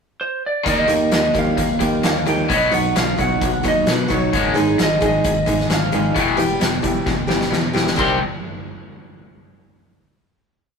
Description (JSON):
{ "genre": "quiet-loud alternative rock", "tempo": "131 BPM", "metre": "4/4", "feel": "straight", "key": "unclear", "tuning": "A4 = 440 Hz", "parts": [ { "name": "lightly driven lead guitar", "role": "melody", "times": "0.2-8.2 s", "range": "B4 to C6", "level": "-22 LUFS", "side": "right 2 dB", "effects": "none" }, { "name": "overdriven electric guitar", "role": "riff", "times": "0.6-8.2 s", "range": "E2 to Eb4", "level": "-21 LUFS", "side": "left 4 dB", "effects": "none" }, { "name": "fingered electric bass", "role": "bass", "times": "0.7-8.2 s", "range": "E1 to B2", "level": "-26 LUFS", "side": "equal", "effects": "none" }, { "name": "oversized low-tuned drum kit", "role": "drums", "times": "0.7-8.1 s", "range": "crash cymbal, hi-hat, kick drum, snare drum", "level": "-22 LUFS", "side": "equal", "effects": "none" }, { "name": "picked steel-string acoustic guitar", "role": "arpeggios", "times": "0.9-8.2 s", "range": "C3 to Ab4", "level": "-22 LUFS", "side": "right 2 dB", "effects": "none" } ], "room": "moderate small room reverb, RT60 0.6 s", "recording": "rough rehearsal-room recording", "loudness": "-16 LUFS", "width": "side -6 dB against mid", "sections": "0.0-0.7 pickup bar; 0.7-8.0 pre-chorus; 8.0-9.8 final chord", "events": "drum fill 7.1-8.0", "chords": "0.0 N.C.; 0.7 Eb; 2.5 B; 4.3 Abm; 6.2 Em; 8.0 C5" }